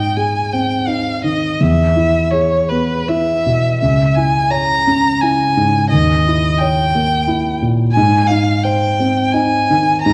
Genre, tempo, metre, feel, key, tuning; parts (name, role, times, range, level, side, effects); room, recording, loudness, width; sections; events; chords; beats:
classical, romantic duo for violin and grand piano; 74-90 BPM; 3/4; rubato; A4 = 439 Hz
clear violin; melody; 0.0-10.1 s; B4 to Bb5; -18 LUFS; equal
dark concert grand piano; accompaniment; 0.0-10.1 s; Db2 to Db5; -18 LUFS; equal
wet recital hall reverb, RT60 1.5 s; dark, warm production, vinyl crackle; -15 LUFS; mono
0.0-10.1 A section
0.0 Ab; 1.6 E; 3.8 Dbm; 5.9 Eb7b9; 7.9 Ab
0.16 0.89 | 1.60 2.33 3.11 | 3.83 4.52 5.23 | 5.92 6.60 7.27 | 7.95 8.64 9.34 | 10.04